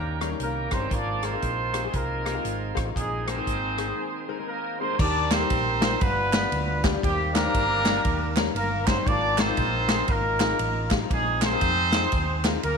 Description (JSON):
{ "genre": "uptempo gospel", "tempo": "118 BPM", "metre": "4/4", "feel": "swing 62% on 8ths", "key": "Eb major", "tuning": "A4 = 440 Hz", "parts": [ { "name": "warm horn section", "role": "melody", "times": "0.0-12.8 s", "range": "G3 to D5", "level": "-26 LUFS", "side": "right 1 dB", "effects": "slapback echo" }, { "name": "bright baby grand piano", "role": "accompaniment", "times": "0.0-12.6 s", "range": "G2 to Db5", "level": "-32 LUFS", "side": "left 13 dB", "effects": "none" }, { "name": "bright tonewheel organ", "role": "sustained chords", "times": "0.0-5.0 s", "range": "Eb3 to Ab4", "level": "-37 LUFS", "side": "right 11 dB", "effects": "slow rotary speaker, overdrive" }, { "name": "hollow-body short-scale fingered electric bass", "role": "bass", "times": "0.0-12.8 s", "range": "G1 to F2", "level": "-30 LUFS", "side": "right 1 dB", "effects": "none" }, { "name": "swinging big-band drum kit", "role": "drums", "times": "0.2-12.8 s", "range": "crash cymbal, hi-hat, kick drum, ride cymbal, rim click, snare drum", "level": "-27 LUFS", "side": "equal", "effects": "none" }, { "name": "group handclap", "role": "percussion", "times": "5.3-12.5 s", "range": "none", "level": "-33 LUFS", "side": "right 17 dB", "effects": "none" } ], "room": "light reverb, small room ambience", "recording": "1960s-style stereo with parts hard left and right", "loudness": "-22 LUFS", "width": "side -5 dB against mid", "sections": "0.0-5.0 A section; 5.0-12.8 B section", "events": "break 4.0-5.0", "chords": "0.0 Eb7; 0.9 Ab69; 3.0 Bb9sus4; 5.0 Eb6; 6.0 G7; 7.0 Cm9/Eb; 8.0 Eb7; 9.1 Ab69; 11.1 Bb9sus4" }